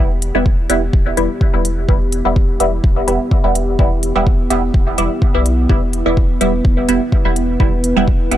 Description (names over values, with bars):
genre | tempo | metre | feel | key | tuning
dub techno | 126 BPM | 4/4 | swing 54% on 16ths | E minor | A4 = 440 Hz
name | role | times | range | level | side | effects
dark analog pad | sustained chords | 0.0-8.4 s | B3 to B4 | -22 LUFS | equal | chorus, sidechain pumping
filtered dub chord stab | stabs | 0.0-8.4 s | G3 to E4 | -18 LUFS | right 1 dB | phaser, sidechain pumping, dub echo
soft dub sub bass | bass | 0.0-8.4 s | D1 to B1 | -20 LUFS | equal | sidechain pumping
electronic hi-hat | drums | 0.2-8.4 s | none | -23 LUFS | left 1 dB | small room ambience
electronic kick drum | drums | 0.5-8.2 s | none | -14 LUFS | equal | small room ambience
room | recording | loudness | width
digital ambience | dry, gritty hardware recording | -13 LUFS | side -12 dB against mid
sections
0.0-8.4 A section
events
filter sweep on synth stab 0.0-8.4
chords
0.0 Em